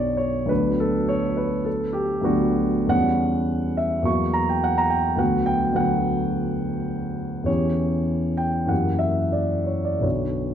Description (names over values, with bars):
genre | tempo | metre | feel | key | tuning
classical, romantic character piece for solo piano | 82-108 BPM | 4/4 | rubato | B minor | A4 = 440 Hz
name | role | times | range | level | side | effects
warm concert grand piano | solo | 0.0-10.5 s | B1 to C#6 | -20 LUFS | equal | none
room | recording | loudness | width
wet recital hall reverb, RT60 1.6 s | dark, warm production, nothing above 10.8 kHz | -20 LUFS | side -9 dB against mid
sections
0.0-10.5 A section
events
none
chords
0.5 Bm/D; 2.9 C#m7b5/E; 4.1 F#7/E; 5.2 Bm/D; 7.5 C#dim/E; 8.7 F#7b9; 10.0 Bm